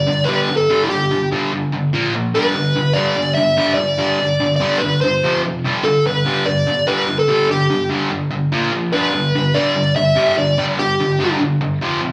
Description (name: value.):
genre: rock.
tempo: 146 BPM.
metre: 4/4.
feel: straight.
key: G mixolydian.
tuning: A4 = 435 Hz.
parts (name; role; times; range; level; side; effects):
dark smooth lead guitar; melody; 0.0-11.4 s; E4 to E5; -19 LUFS; equal; overdrive.
distorted electric guitar; riff; 0.0-12.1 s; F2 to Bb3; -20 LUFS; equal; distortion.
room: wet large studio reverb, RT60 0.8 s.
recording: band playing live in one room, nothing above 10.6 kHz.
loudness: -17 LUFS.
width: mono.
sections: 0.0-12.1 A section.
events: none.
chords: 0.0 G5; 1.9 Bb5; 2.3 G; 5.2 F5; 5.6 G; 8.5 Bb5; 8.9 G.